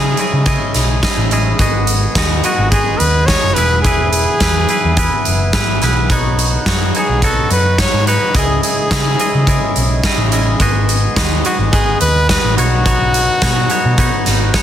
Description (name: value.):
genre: indie rock.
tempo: 106 BPM.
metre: 4/4.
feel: straight.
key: unclear.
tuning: A4 = 437 Hz.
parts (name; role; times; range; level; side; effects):
bright trumpet; melody; 0.0-14.5 s; F#4 to C#5; -18 LUFS; left 1 dB; slapback echo.
twangy electric guitar; riff; 0.0-14.6 s; C#3 to D#5; -19 LUFS; equal; none.
hollow-body short-scale picked electric bass; bass; 0.0-14.5 s; E1 to C#3; -16 LUFS; equal; none.
big rock drum kit; drums; 0.2-14.6 s; hi-hat, kick drum, snare drum; -16 LUFS; equal; none.
room: small room ambience.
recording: dense, heavily limited modern master.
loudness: -11 LUFS.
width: side -10 dB against mid.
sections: 0.0-14.6 A section.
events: none.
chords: 0.0 C#madd9; 1.6 G#m7; 3.6 E; 6.1 Badd9; 8.4 C#madd9; 10.6 G#m7; 12.6 Badd9.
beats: 0.47 1.03 | 1.59 2.16 2.72 3.28 | 3.85 4.41 4.97 5.54 | 6.10 6.66 7.22 7.79 | 8.35 8.91 9.48 10.04 | 10.60 11.17 11.73 12.29 | 12.86 13.42 13.98 14.54.